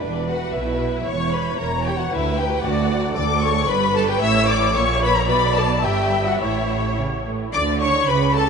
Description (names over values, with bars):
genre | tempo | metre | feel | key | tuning
quick classical-period movement for string orchestra | 113 BPM | 2/4 | rubato | unclear | A4 = 440 Hz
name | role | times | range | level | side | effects
dark symphonic violin section | melody | 0.0-8.5 s | D5 to E6 | -23 LUFS | left 7 dB | none
rich symphonic violin section | second line | 0.0-8.5 s | D4 to D6 | -25 LUFS | left 2 dB | none
rich studio viola section | accompaniment | 0.0-8.5 s | A4 to E5 | -24 LUFS | right 1 dB | none
clear symphonic double bass section | bass | 0.0-8.5 s | E1 to D2 | -25 LUFS | right 3 dB | none
rich symphonic cello section | bass | 0.0-8.5 s | D2 to D3 | -25 LUFS | right 5 dB | none
room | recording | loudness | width
wet cathedral reverb, RT60 6.0 s | in a vast, echoing space, nothing above 10.7 kHz | -18 LUFS | side -6 dB against mid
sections
0.0-7.5 A section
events
none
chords
0.0 E5; 1.1 C#m7/E; 2.1 D5; 3.7 G; 4.2 A; 4.8 Bbm; 5.3 Bm; 5.8 Em/G; 6.4 A; 7.5 N.C.